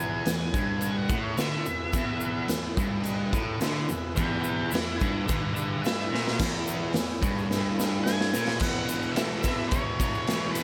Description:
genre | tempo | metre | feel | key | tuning
garage rock duo or trio | 108 BPM | 4/4 | straight | E major | A4 = 445 Hz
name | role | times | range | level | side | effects
octave-fuzz lead guitar | melody | 0.0-10.6 s | B4 to B5 | -35 LUFS | equal | distortion
combo organ | sustained chords | 0.0-10.6 s | G#4 to F#5 | -41 LUFS | equal | spring reverb
thick fuzz guitar | riff | 0.0-10.6 s | E2 to E3 | -32 LUFS | equal | distortion
raw garage drum kit | drums | 0.3-10.6 s | crash cymbal, hi-hat, kick drum, ride cymbal, snare drum | -31 LUFS | equal | none
egg shaker | percussion | 0.3-10.6 s | none | -42 LUFS | equal | none
room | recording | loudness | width
light reverb | none | -28 LUFS | mono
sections
0.0-6.4 A section; 6.4-8.6 B section; 8.6-10.6 C section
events
lead electric guitar solo 0.0-6.4; drum fill 6.1, 7.5-8.6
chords
0.0 E

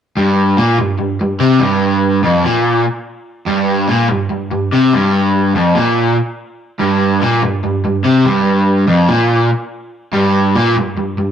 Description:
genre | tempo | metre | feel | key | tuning
rock | 144 BPM | 4/4 | straight | unclear | A4 = 439 Hz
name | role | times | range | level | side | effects
overdriven semi-hollow guitar | solo | 0.2-11.3 s | F2 to C3 | -12 LUFS | equal | spring reverb
room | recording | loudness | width
moderate studio reverb, RT60 0.6 s | rough rehearsal-room recording | -12 LUFS | side -8 dB against mid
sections
0.2-11.3 A section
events
none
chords
none

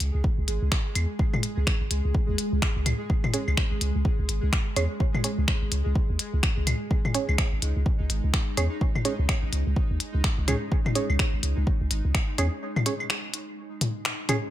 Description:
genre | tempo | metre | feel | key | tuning
minimal techno | 126 BPM | 4/4 | swing 60% on 16ths | unclear | A4 = 439 Hz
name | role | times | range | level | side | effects
punchy sub bass | bass | 0.0-12.5 s | G#1 to E2 | -25 LUFS | equal | sidechain pumping
minimal click drum kit | drums | 0.0-14.4 s | finger snaps, hi-hat | -29 LUFS | left 2 dB | small room ambience
pulsing gated texture | texture | 0.0-14.5 s | G#3 to G#4 | -35 LUFS | equal | chorus, built-in reverb, sidechain pumping
electronic kick drum | drums | 0.2-12.3 s | none | -26 LUFS | equal | small room ambience
electronic claves and toms | percussion | 1.0-14.4 s | none | -29 LUFS | left 2 dB | small room ambience, dub echo
filtered dub chord stab | stabs | 3.3-14.4 s | C#4 to C#5 | -31 LUFS | right 4 dB | chorus, vintage 12-bit sampler grit, dub echo
room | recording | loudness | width
little or no reverb | none | -23 LUFS | side -13 dB against mid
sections
0.0-14.5 A section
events
break 12.6-14.5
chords
0.0 C#5

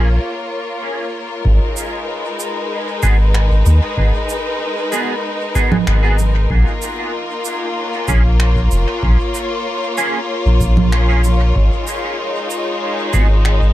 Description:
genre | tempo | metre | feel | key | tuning
ambient dub | 95 BPM | 4/4 | straight | G# dorian | A4 = 439 Hz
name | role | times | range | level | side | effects
bright studio string section | sustained chords | 0.0-13.7 s | G#3 to C#5 | -21 LUFS | left 2 dB | none
clean electric guitar | stabs | 0.0-13.3 s | A#3 to G#4 | -24 LUFS | right 2 dB | analog chorus, dub echo
soft dub sub bass | bass | 0.0-13.7 s | E#1 to D#2 | -13 LUFS | equal | none
electronic kick drum | drums | 1.4-13.7 s | none | -19 LUFS | equal | none
electronic cabasa, finger snaps and congas | drums | 1.8-13.6 s | none | -22 LUFS | right 4 dB | overdrive, dub echo
room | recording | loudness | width
digital ambience | echo-heavy mix | -14 LUFS | side -14 dB against mid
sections
0.0-1.5 A section; 1.5-13.7 B section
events
break 0.2-1.5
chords
0.0 A#m; 1.5 G#m7; 6.5 A#m; 11.6 G#5

